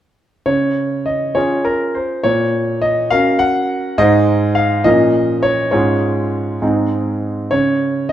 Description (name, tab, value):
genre	classical-period piano sonatina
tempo	68 BPM (dotted quarters)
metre	6/8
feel	straight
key	Db major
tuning	A4 = 439 Hz
part	clear concert grand piano	solo	0.5-8.1 s	Ab2 to Gb5	-14 LUFS	equal	none
room	moderate recital hall reverb, RT60 1.5 s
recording	none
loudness	-14 LUFS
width	side -11 dB against mid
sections	0.5-8.1 A section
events	none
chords	0.5 Db; 2.2 Gb/Bb; 4.0 Ab; 4.9 Bbm; 5.7 Db/Ab; 6.6 Ab; 7.5 N.C.